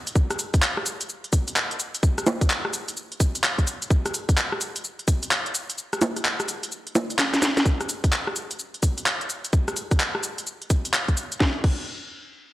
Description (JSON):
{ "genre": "UK garage", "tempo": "128 BPM", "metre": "4/4", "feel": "swing 64% on 16ths", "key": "none", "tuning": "none", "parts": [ { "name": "garage drum kit", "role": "drums", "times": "0.1-11.8 s", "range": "bongos, cabasa, crash cymbal, handclaps, hi-hat, rim click, snare drum", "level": "-24 LUFS", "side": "equal", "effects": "none" }, { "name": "electronic kick drum", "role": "drums", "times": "0.2-11.8 s", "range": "none", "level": "-21 LUFS", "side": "equal", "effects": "none" } ], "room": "light reverb", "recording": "dry, gritty hardware recording", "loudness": "-22 LUFS", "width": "side -16 dB against mid", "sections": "0.0-7.7 A section; 7.7-11.4 B section; 11.4-12.5 C section", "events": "drop 0.0-7.7; kick drops out 5.8-7.7; drum fill 7.2-7.7", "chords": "none", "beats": "| 0.15 0.62 1.09 1.56 | 2.03 2.50 2.97 3.44 | 3.90 4.37 4.84 5.31 | 5.78 6.25 6.72 7.19 | 7.66 8.12 8.59 9.06 | 9.53 10.00 10.47 10.94 | 11.40" }